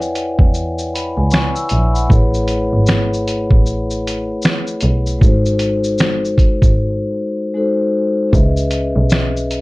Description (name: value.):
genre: lo-fi hip hop.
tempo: 77 BPM.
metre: 4/4.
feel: swing 60% on 16ths.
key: C# minor.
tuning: A4 = 441 Hz.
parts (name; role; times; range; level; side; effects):
vibraphone with soft mallets; accompaniment; 0.0-9.6 s; G#3 to E6; -18 LUFS; left 2 dB; low-pass filter.
rich double bass; bass; 0.0-9.6 s; G#1 to E2; -18 LUFS; equal; none.
lo-fi sampler-style drum kit; drums; 0.0-9.6 s; finger snaps, hi-hat, kick drum, shaker, snare drum; -15 LUFS; equal; none.
room: little or no reverb.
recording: dark, warm production.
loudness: -13 LUFS.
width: side -21 dB against mid.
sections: 0.0-8.3 A section; 8.3-9.6 A section.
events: vibraphone fill 0.5-2.1; break 6.8-8.3.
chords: 0.0 E13; 2.1 Amaj9; 5.2 G#7b9; 8.3 C#m9.